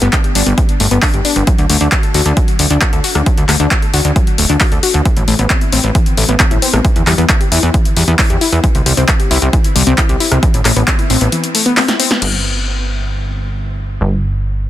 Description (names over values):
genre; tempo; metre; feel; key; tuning
uplifting trance; 134 BPM; 4/4; straight; unclear; A4 = 440 Hz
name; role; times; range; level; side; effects
wide unison pluck; arpeggios; 0.0-12.2 s; E3 to A4; -18 LUFS; left 3 dB; sidechain pumping, dub echo
plucky analog bass; bass; 0.0-14.7 s; D1 to E2; -14 LUFS; right 1 dB; sidechain pumping
punchy analog drum machine; drums; 0.0-12.3 s; crash cymbal, handclaps, hi-hat, rim click, snare drum; -16 LUFS; left 2 dB; overdrive
electronic kick drum; drums; 0.1-11.0 s; none; -14 LUFS; equal; overdrive
room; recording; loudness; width
digital ambience; dense, heavily limited modern master; -10 LUFS; side -13 dB against mid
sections
0.0-12.2 A section; 12.2-14.7 B section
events
drum fill 11.8-12.2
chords
0.0 Gadd9; 1.5 D; 5.1 Amadd9; 6.8 Em; 8.6 C; 10.4 Amadd9; 12.2 N.C.